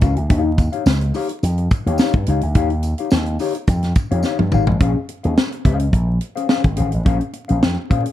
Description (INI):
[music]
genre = funk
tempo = 106 BPM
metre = 4/4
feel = straight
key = Bb dorian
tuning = A4 = 440 Hz
[part]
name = mellow electric guitar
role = accompaniment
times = 0.0-8.1 s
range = Db4 to F5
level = -23 LUFS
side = left 6 dB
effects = phaser
[part]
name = slap bass with an envelope filter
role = bass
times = 0.0-8.0 s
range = Ab1 to Bb2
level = -18 LUFS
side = equal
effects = none
[part]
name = tight funk drum kit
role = drums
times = 0.0-8.1 s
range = hi-hat, kick drum, snare drum, toms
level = -18 LUFS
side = equal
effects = none
[part]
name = tambourine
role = percussion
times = 0.0-4.7 s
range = none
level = -40 LUFS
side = left 1 dB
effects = none
[sound]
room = small room ambience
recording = dark, warm production, vinyl crackle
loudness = -16 LUFS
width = side -13 dB against mid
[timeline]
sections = 0.0-4.8 A section; 4.8-8.1 B section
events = drum fill 4.2-4.8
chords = 0.3 Eb9; 4.8 Bbm9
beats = | 0.30 0.86 1.43 1.99 | 2.55 3.11 3.68 4.24 | 4.80 5.37 5.93 6.49 | 7.06 7.62